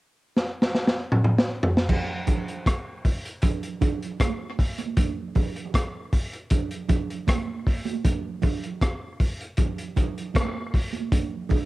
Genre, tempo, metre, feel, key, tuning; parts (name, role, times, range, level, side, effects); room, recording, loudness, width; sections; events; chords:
reggae; 78 BPM; 4/4; straight
crunchy breakbeat drum kit; drums; 0.4-11.7 s; crash cymbal, hi-hat, kick drum, rim click, snare drum, toms; -22 LUFS; equal
congas; percussion; 1.9-11.7 s; -30 LUFS; right 7 dB; tape echo
light reverb; home recording on cassette; -23 LUFS; side -18 dB against mid
0.0-1.9 A section; 1.9-11.7 B section
drum fill 0.4-1.9